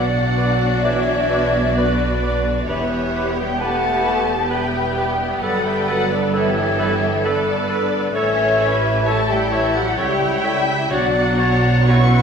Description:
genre	cinematic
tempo	65 BPM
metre	3/4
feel	rubato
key	B minor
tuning	A4 = 438 Hz
part	muted symphonic violin section	melody	0.0-12.2 s	D5 to C#6	-23 LUFS	left 3 dB	none
part	bright clarinet	second line	0.0-12.0 s	F#4 to B4	-29 LUFS	equal	none
part	clear cor anglais	second line	0.0-12.0 s	B4 to D5	-28 LUFS	right 2 dB	none
part	concert flute	second line	0.0-12.2 s	B4 to F#5	-26 LUFS	left 2 dB	none
part	muted symphonic violin section	second line	0.0-12.2 s	G4 to E5	-26 LUFS	left 1 dB	none
part	muted symphonic viola section	accompaniment	0.0-12.2 s	B3 to A4	-24 LUFS	right 1 dB	none
part	warm French horn section	sustained chords	0.0-12.2 s	D3 to C#4	-26 LUFS	left 2 dB	none
part	muted symphonic cello section	bass	0.0-12.2 s	E2 to C#3	-23 LUFS	right 2 dB	none
part	muted symphonic double bass section	bass	0.0-12.2 s	E1 to C#2	-26 LUFS	right 2 dB	none
room	wet recital hall reverb, RT60 1.5 s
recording	recorded in a church or concert hall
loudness	-16 LUFS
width	side -6 dB against mid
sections	0.0-12.2 A section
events	none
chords	0.0 Bmadd9; 2.7 Em; 5.4 Gadd9; 8.2 A; 10.9 Bmadd9

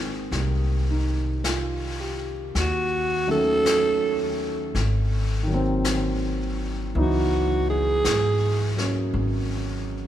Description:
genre	jazz ballad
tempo	54 BPM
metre	4/4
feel	swing 66% on 8ths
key	unclear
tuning	A4 = 440 Hz
part	dark concert grand piano	accompaniment	0.0-10.1 s	Eb3 to G4	-28 LUFS	right 1 dB	none
part	upright bass	bass	0.3-10.1 s	Ab1 to Ab2	-26 LUFS	equal	none
part	vintage brush drum kit	drums	0.3-10.1 s	brushed snare drum, hi-hat, snare drum	-32 LUFS	left 3 dB	none
part	growling alto saxophone	melody	2.6-8.7 s	Gb4 to A4	-25 LUFS	right 2 dB	none
room	moderate cathedral reverb, RT60 5.8 s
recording	recorded in a church or concert hall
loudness	-21 LUFS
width	side -11 dB against mid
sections	0.0-10.1 A section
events	alto saxophone solo 0.0-10.1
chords	0.0 Abmaj9; 2.6 Ebm7b5; 4.8 Ab7; 7.0 Dbm11

